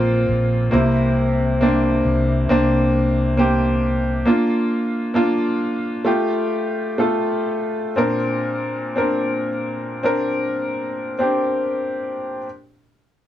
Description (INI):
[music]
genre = pop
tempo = 47-68 BPM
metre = 4/4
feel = straight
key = Bb major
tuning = A4 = 440 Hz
[part]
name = bright upright piano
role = accompaniment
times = 0.0-12.5 s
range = Bb2 to Bb4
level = -18 LUFS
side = equal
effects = none
[part]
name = fretless electric bass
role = bass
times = 0.0-4.2 s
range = Bb1 to C2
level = -20 LUFS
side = left 1 dB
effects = ensemble chorus
[sound]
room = light reverb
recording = cassette tape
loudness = -18 LUFS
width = side -12 dB against mid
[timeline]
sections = 0.0-12.4 A section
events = slowing down 4.3-12.4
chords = 0.0 Bbsus2; 0.7 C7; 4.3 Bb; 6.1 Fadd9; 8.0 Bbadd9